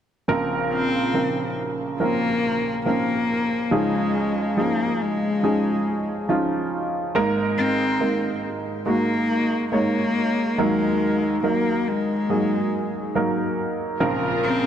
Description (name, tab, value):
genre	pop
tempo	70 BPM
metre	4/4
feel	straight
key	Bb minor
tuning	A4 = 440 Hz
part	warm upright piano	accompaniment	0.3-14.7 s	Ab1 to Db5	-22 LUFS	right 2 dB	none
part	warm cello	melody	0.7-14.7 s	Ab3 to C4	-24 LUFS	left 2 dB	none
part	rich studio string section	sustained chords	14.0-14.7 s	Bb2 to Bb4	-27 LUFS	left 4 dB	none
room	moderate lush hall reverb, RT60 2.4 s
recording	dark, warm production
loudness	-20 LUFS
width	side -9 dB against mid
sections	0.3-14.7 A section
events	none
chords	0.3 Bbmadd9; 3.7 Dbadd9; 7.1 Absus2; 10.6 Ebm; 14.0 Bbmadd9